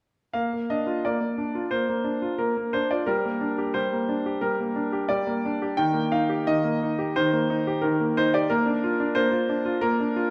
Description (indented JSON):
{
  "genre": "classical-period piano sonatina",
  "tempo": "88 BPM",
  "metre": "4/4",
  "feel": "rubato",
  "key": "Bb major",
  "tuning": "A4 = 440 Hz",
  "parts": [
    { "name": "clear grand piano", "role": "solo", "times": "0.3-10.3 s", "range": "Eb3 to G5", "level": "-25 LUFS", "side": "equal", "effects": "none" }
  ],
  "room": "wet recital hall reverb, RT60 1.7 s",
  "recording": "none",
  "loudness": "-25 LUFS",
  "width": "mono",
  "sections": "0.3-10.3 A section",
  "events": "none",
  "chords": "0.3 Bb; 3.1 Gm; 5.8 Eb; 8.5 Bb"
}